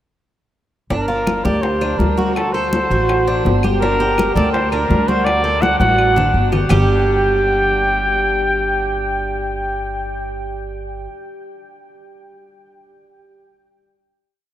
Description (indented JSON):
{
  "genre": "latin, Cuban son and guajira",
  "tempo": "166 BPM",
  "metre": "4/4",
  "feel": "straight",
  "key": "G harmonic minor",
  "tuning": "A4 = 440 Hz",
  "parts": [
    { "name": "breathy trumpet", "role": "melody", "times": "0.9-10.4 s", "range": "A4 to G5", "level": "-19 LUFS", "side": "equal", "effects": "none" },
    { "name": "Cuban tres", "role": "arpeggios", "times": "0.9-11.1 s", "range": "G3 to A4", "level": "-21 LUFS", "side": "right 2 dB", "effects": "none" },
    { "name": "upright bass", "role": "bass", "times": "0.9-11.1 s", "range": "G1 to D2", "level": "-20 LUFS", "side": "equal", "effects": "none" },
    { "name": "bongos", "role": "percussion", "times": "0.9-6.8 s", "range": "none", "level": "-28 LUFS", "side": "left 4 dB", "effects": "none" },
    { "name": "congas", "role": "percussion", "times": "0.9-6.8 s", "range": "none", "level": "-24 LUFS", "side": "left 1 dB", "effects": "none" },
    { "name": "claves", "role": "percussion", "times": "1.3-6.8 s", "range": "none", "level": "-35 LUFS", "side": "left 4 dB", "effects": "none" }
  ],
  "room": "wet huge ambient reverb, RT60 7.1 s",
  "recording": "in a vast, echoing space",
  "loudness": "-14 LUFS",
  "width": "side -12 dB against mid",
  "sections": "0.9-6.7 verse; 6.7-9.6 final chord",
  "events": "drum fill 5.6-6.7",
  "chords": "0.9 Gm7; 2.4 Gmadd9; 6.7 G5",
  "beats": "| 0.90 1.26 1.63 1.99 | 2.36 2.72 3.08 3.45 | 3.81 4.17 4.54 4.90 | 5.26 5.62 5.98 6.34 | 6.71 7.07 7.43 7.79 | 8.15 8.51 8.87 9.23"
}